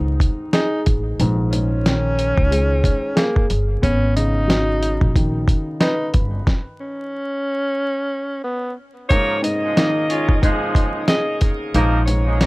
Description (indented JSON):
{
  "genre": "hip hop, boom-bap hip-hop",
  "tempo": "91 BPM",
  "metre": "4/4",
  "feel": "swing 57% on 16ths",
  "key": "Bb phrygian",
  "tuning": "A4 = 441 Hz",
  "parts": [
    { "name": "breathy tenor saxophone", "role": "melody", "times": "0.0-12.5 s", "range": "Bb3 to Eb5", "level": "-23 LUFS", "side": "equal", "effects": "high-pass filter, low-pass filter, analog delay" },
    { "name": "dark upright piano", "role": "accompaniment", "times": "0.0-12.5 s", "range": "Ab2 to Cb5", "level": "-23 LUFS", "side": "left 1 dB", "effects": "cassette tape, high-pass filter, low-pass filter" },
    { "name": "upright bass", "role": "bass", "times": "0.0-6.4, 11.7-12.5 s", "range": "G1 to Db2", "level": "-19 LUFS", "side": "equal", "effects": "none" },
    { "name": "dusty soul sampler-style drum kit", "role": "drums", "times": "0.2-12.5 s", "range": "hi-hat, kick drum, snare drum", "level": "-18 LUFS", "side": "equal", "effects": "vintage 12-bit sampler grit" },
    { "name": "bright tonewheel organ", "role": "sustained chords", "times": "9.1-12.5 s", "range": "Db3 to Eb4", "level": "-32 LUFS", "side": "equal", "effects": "overdrive, slow rotary speaker, high-pass filter, low-pass filter" },
    { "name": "dark horn section", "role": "stabs", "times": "9.1-12.5 s", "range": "F3 to Db5", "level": "-24 LUFS", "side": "right 1 dB", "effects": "high-pass filter, low-pass filter, analog delay" }
  ],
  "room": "little or no reverb",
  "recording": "dry, gritty hardware recording, vinyl crackle",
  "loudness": "-16 LUFS",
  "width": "side -22 dB against mid",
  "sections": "0.0-9.1 A section; 9.1-12.5 B section",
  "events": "stop 6.5-9.1",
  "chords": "0.0 Bbm7; 3.8 Abm11; 9.1 Bbm7"
}